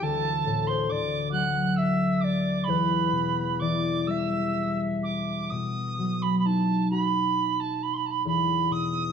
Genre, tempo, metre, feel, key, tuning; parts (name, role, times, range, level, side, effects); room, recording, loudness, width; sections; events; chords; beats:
celtic folk, Celtic slow air; 41-46 BPM (dotted quarters); 6/8; rubato; E minor; A4 = 440 Hz
wooden whistle; melody; 0.0-9.1 s; A5 to F#6; -28 LUFS; right 7 dB
mellow wooden flute; second line; 0.0-5.5 s; A4 to F#5; -32 LUFS; left 3 dB
concert harp; accompaniment; 0.0-9.1 s; D2 to F#4; -26 LUFS; left 2 dB
wet recital hall reverb, RT60 1.3 s; dark, warm production; -24 LUFS; side -7 dB against mid
0.0-5.5 A section; 5.5-9.1 B section
0.0 D; 2.7 Em; 5.5 B; 8.3 Esus2
| 0.01 1.32 | 2.67 4.09 | 5.52 6.91 | 8.26